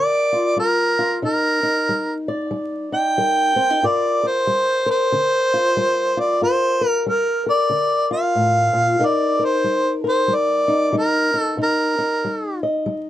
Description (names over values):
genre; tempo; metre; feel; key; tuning
acoustic country blues, solo or duo; 93 BPM; 4/4; swing 61% on 8ths; G minor; A4 = 440 Hz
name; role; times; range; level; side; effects
warm harmonica; melody; 0.0-12.6 s; Bb4 to G5; -18 LUFS; right 1 dB; none
fingerpicked old ladder-braced acoustic guitar; accompaniment; 0.0-13.1 s; G2 to Eb5; -22 LUFS; left 3 dB; none
room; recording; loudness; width
light reverb; dark, warm production, vinyl crackle; -17 LUFS; side -12 dB against mid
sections
0.0-13.1 A section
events
none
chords
0.0 Gm7; 1.2 Cm9; 3.8 Gm7; 9.0 Cm9